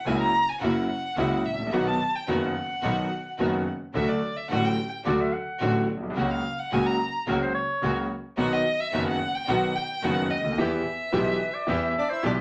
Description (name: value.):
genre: tango.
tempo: 108 BPM.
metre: 4/4.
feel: rubato.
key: unclear.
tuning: A4 = 442 Hz.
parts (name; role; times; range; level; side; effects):
warm violin; second line; 0.0-12.3 s; D4 to A#5; -31 LUFS; equal; none.
warm concert grand piano; accompaniment; 0.1-12.4 s; F#1 to G4; -29 LUFS; equal; none.
rich studio string section; stabs; 0.1-12.4 s; A3 to G4; -37 LUFS; equal; none.
bright double bass; bass; 0.1-12.4 s; F#1 to E2; -36 LUFS; equal; none.
clear clarinet; second line; 5.1-12.4 s; A#4 to F#5; -32 LUFS; equal; none.
bandoneon; melody; 12.0-12.3 s; D5 to E5; -32 LUFS; equal; none.
room: wet studio reverb, RT60 0.5 s.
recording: none.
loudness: -26 LUFS.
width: mono.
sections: 0.0-12.4 A section.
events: violin solo 0.0-12.4.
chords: 0.0 F#7; 1.7 B; 4.0 D; 6.2 F#/C#; 8.4 B; 10.6 Em.